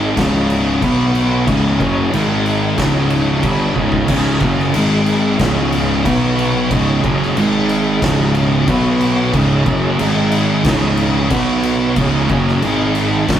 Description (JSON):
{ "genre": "stoner and doom metal", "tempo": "92 BPM", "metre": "4/4", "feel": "straight", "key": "unclear", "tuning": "A4 = 440 Hz", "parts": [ { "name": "tonewheel organ", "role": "sustained chords", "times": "0.0-13.4 s", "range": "G#3 to G#5", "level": "-25 LUFS", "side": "left 1 dB", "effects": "chorus vibrato, fast rotary speaker" }, { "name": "thick fuzz guitar", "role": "riff", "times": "0.0-13.4 s", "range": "C#2 to B3", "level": "-22 LUFS", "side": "left 5 dB", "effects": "distortion" }, { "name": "thick fuzz guitar", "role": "riff", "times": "0.0-13.4 s", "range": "C#2 to B3", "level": "-18 LUFS", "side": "right 4 dB", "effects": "distortion" }, { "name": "thick fuzz guitar", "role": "riff", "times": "0.0-13.4 s", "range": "C#2 to B3", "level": "-19 LUFS", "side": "equal", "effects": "distortion" }, { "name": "fuzz fingered electric bass", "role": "bass", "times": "0.0-13.4 s", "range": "C#1 to B1", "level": "-22 LUFS", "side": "left 1 dB", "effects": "overdrive" }, { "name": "oversized low-tuned drum kit", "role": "drums", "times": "0.2-13.4 s", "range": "crash cymbal, kick drum, snare drum", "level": "-20 LUFS", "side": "left 1 dB", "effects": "none" } ], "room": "moderate stone room reverb, RT60 1.0 s", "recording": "rough rehearsal-room recording", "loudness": "-13 LUFS", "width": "side -10 dB against mid", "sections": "0.0-4.1 A section; 4.1-13.4 B section", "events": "drum fill 3.8-4.1", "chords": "0.2 C#5; 0.8 B5; 1.5 C#5; 2.1 G#5; 2.8 C#5; 4.7 G#5; 5.4 C#5; 6.1 B5; 6.7 C#5; 7.4 G#5; 8.0 C#5; 8.7 B5; 9.3 C#5; 10.0 G#5; 10.7 C#5; 11.3 B5; 12.0 C#5; 12.6 G#5" }